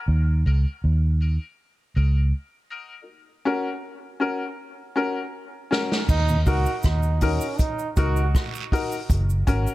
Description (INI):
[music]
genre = dub reggae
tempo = 80 BPM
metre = 4/4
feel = straight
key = Eb minor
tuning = A4 = 440 Hz
[part]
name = vintage muted fingered electric bass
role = bass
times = 0.1-9.7 s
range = Gb1 to Eb2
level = -20 LUFS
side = equal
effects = none
[part]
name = bright upright piano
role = stabs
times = 0.5-9.7 s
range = Db4 to Bb4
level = -28 LUFS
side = left 3 dB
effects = high-pass filter, dub echo
[part]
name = vintage drum kit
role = drums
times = 5.7-9.7 s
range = crash cymbal, hi-hat, kick drum, rim click, snare drum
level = -24 LUFS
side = equal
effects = none
[part]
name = brilliant trombone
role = second line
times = 6.1-8.3 s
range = Db4 to Gb4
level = -29 LUFS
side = right 5 dB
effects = dub echo
[part]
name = cabasa and guiro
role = percussion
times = 6.1-9.7 s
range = none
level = -38 LUFS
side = right 10 dB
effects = dub echo
[part]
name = mellow tonewheel organ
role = accompaniment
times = 6.3-6.4 s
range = Eb2 to Bb2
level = -30 LUFS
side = right 1 dB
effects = slow rotary speaker, dub echo
[sound]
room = little or no reverb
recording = none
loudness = -21 LUFS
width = side -17 dB against mid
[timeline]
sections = 0.0-6.1 A section; 6.1-9.7 B section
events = filter sweep on upright piano 0.0-3.1; break 3.1-6.1; drum fill 4.6-6.1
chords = 0.1 Ebm; 3.1 Gb; 6.1 Ebm; 9.1 Gb